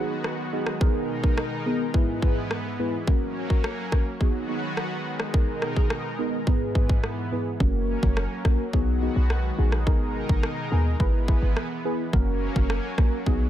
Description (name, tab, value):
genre	dancehall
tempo	106 BPM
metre	4/4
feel	straight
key	unclear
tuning	A4 = 440 Hz
part	deep mellow chord stab	accompaniment	0.0-13.5 s	G#2 to B4	-29 LUFS	right 1 dB	chorus, phaser
part	lush unison pad	sustained chords	0.0-13.5 s	G#2 to A#4	-32 LUFS	equal	chorus, sidechain pumping
part	island pop drum kit	drums	0.2-13.4 s	kick drum, rim click	-23 LUFS	equal	overdrive
part	short 808-style bass	bass	7.6-13.5 s	F#1 to D#2	-24 LUFS	equal	none
room	little or no reverb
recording	none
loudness	-22 LUFS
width	side -12 dB against mid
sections	0.0-13.5 A section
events	none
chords	0.0 B6; 0.8 G#madd9; 1.9 E/G#; 3.1 F#; 4.2 B6; 5.3 G#madd9; 6.5 E/G#; 7.6 F#; 8.7 B6; 9.9 G#madd9; 11.0 E/G#; 12.1 F#